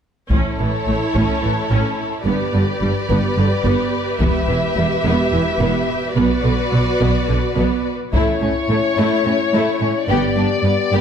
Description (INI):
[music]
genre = cinematic, epic orchestral film score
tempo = 215 BPM (eighths)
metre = 7/8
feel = straight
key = unclear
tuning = A4 = 439 Hz
[part]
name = warm symphonic violin section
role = second line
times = 0.3-11.0 s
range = A3 to E5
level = -23 LUFS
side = left 3 dB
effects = none
[part]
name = rich symphonic viola section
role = accompaniment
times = 0.3-11.0 s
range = D3 to G4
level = -22 LUFS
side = right 3 dB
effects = none
[part]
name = dark symphonic cello section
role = bass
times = 0.3-11.0 s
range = E2 to B2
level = -21 LUFS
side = right 2 dB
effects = none
[part]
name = warm symphonic double bass section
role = bass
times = 0.3-10.3 s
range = E1 to B1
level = -22 LUFS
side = right 2 dB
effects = none
[part]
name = taiko ensemble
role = drums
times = 0.3-9.2 s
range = none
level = -22 LUFS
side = left 2 dB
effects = none
[part]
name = warm studio violin section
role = melody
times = 8.1-11.0 s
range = C#5 to D5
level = -21 LUFS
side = left 5 dB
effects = none
[part]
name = mellow French horn section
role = sustained chords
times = 8.1-11.0 s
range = B3 to G4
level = -22 LUFS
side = left 7 dB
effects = none
[sound]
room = moderate scoring stage reverb, RT60 1.9 s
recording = none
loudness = -16 LUFS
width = side -8 dB against mid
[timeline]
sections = 0.3-8.1 A section; 8.1-11.0 B section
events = build-up 8.1-11.0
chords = 0.3 A; 2.3 G; 4.2 Em; 6.2 Bm; 8.1 A; 10.1 G